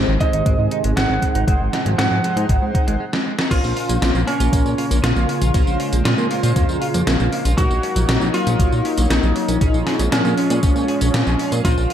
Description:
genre	synthwave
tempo	118 BPM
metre	4/4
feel	straight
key	Bb minor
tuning	A4 = 445 Hz
part	lightly driven lead guitar	melody	0.0-11.9 s	Db4 to Gb5	-23 LUFS	right 1 dB	digital delay
part	warm analog pad	sustained chords	0.0-11.9 s	C3 to Eb4	-26 LUFS	equal	chorus, sidechain pumping
part	chorused polysynth	stabs	0.0-11.9 s	Ab2 to F5	-28 LUFS	right 2 dB	phaser
part	chorused synth bass	bass	0.0-11.9 s	Ab1 to Bb2	-19 LUFS	equal	tube saturation, sidechain pumping
part	clean electric guitar	riff	0.1-11.9 s	Gb3 to Ab4	-30 LUFS	right 2 dB	wide subtle chorus, digital delay
part	electronic kick drum	drums	0.2-11.7 s	none	-19 LUFS	equal	overdrive
part	gated 80s digital drum machine	drums	0.2-11.9 s	crash cymbal, hi-hat, snare drum, tambourine	-23 LUFS	left 1 dB	gated reverb, gated reverb snare, overdrive
part	airy dreamy lead	second line	3.5-11.9 s	Db5 to Gb5	-30 LUFS	equal	chorus, cassette tape, digital delay
room	light reverb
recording	none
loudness	-16 LUFS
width	side -10 dB against mid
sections	0.0-3.5 A section; 3.5-11.9 B section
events	filter sweep on analog polysynth 0.0-3.5; break 3.0-3.5; drum fill 3.1-3.5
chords	0.0 Ab; 3.5 Bbmadd9; 7.6 Gb6/Bb; 9.6 Db/Bb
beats	0.46 0.97 | 1.48 1.99 2.49 3.00 | 3.51 4.02 4.53 5.04 | 5.54 6.05 6.56 7.07 | 7.58 8.09 8.60 9.11 | 9.61 10.12 10.63 11.14 | 11.65

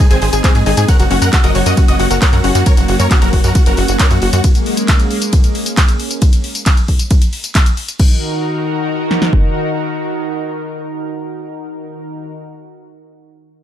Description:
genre	uplifting trance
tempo	135 BPM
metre	4/4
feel	straight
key	Eb dorian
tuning	A4 = 440 Hz
part	big supersaw lead	melody	0.0-4.4 s	C4 to Gb5	-19 LUFS	equal	sidechain pumping, ping-pong delay
part	wide unison pluck	second line	0.0-2.6 s	Gb5 to Gb6	-25 LUFS	right 2 dB	none
part	lush unison pad	sustained chords	0.0-12.3 s	Eb3 to Bb4	-20 LUFS	equal	chorus, sidechain pumping
part	analog pluck	arpeggios	0.0-2.5 s	C4 to Db5	-22 LUFS	left 6 dB	chorus, sidechain pumping, ping-pong delay
part	punchy analog drum machine	drums	0.0-9.4 s	kick drum, snare drum	-11 LUFS	equal	none
part	punchy analog drum machine	drums	0.0-8.1 s	crash cymbal, handclaps, hi-hat, ride cymbal, tambourine	-20 LUFS	left 1 dB	sidechain pumping on hats, sidechain pumping on cymbals, sidechain pumping on perc
part	tight sequencer bass	bass	0.1-4.4 s	Gb1 to Ab2	-16 LUFS	equal	tube saturation, sidechain pumping
room	digital ambience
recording	none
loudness	-11 LUFS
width	side -11 dB against mid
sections	0.0-8.0 A section; 8.0-11.6 B section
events	drop 0.0-8.0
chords	0.0 Ab; 0.9 Gb; 4.4 Bbm7; 8.0 Ebm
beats	0.00 0.44 | 0.89 1.33 1.77 2.22 | 2.66 3.11 3.55 4.00 | 4.44 4.89 5.33 5.78 | 6.22 6.66 7.11 7.55 | 8.00 8.44 8.89 9.33 | 9.78 10.22 10.66 11.11

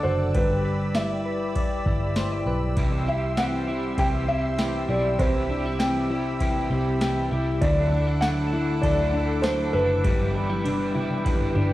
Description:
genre	dream pop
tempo	99 BPM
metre	4/4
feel	straight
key	C lydian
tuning	A4 = 440 Hz
part	felt-muted upright piano	melody	0.0-11.7 s	B4 to G5	-28 LUFS	equal	tape echo
part	lush unison pad	sustained chords	0.0-11.7 s	G4 to E6	-33 LUFS	equal	chorus
part	clean electric guitar	arpeggios	0.0-11.7 s	C3 to D5	-27 LUFS	left 2 dB	analog chorus, tape echo
part	vintage muted picked electric bass	bass	0.0-11.7 s	F#1 to D2	-28 LUFS	equal	none
part	booming analog drum machine	drums	0.3-11.7 s	kick drum, ride cymbal, snare drum, tambourine, toms	-25 LUFS	equal	none
part	electric guitar at the edge of break-up	accompaniment	2.8-11.7 s	G2 to G4	-31 LUFS	right 2 dB	harmonic tremolo, analog chorus
room	light reverb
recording	played on a big sound system in a bare room, large studio reverb, vinyl crackle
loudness	-22 LUFS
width	side -15 dB against mid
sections	0.0-11.7 A section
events	drum fill 10.0-11.7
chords	0.3 G6; 2.8 C; 7.6 Dadd9; 10.0 G6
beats	| 0.35 0.95 1.56 2.16 | 2.77 3.38 3.98 4.59 | 5.19 5.80 6.41 7.01 | 7.62 8.22 8.83 9.44 | 10.04 10.65 11.26

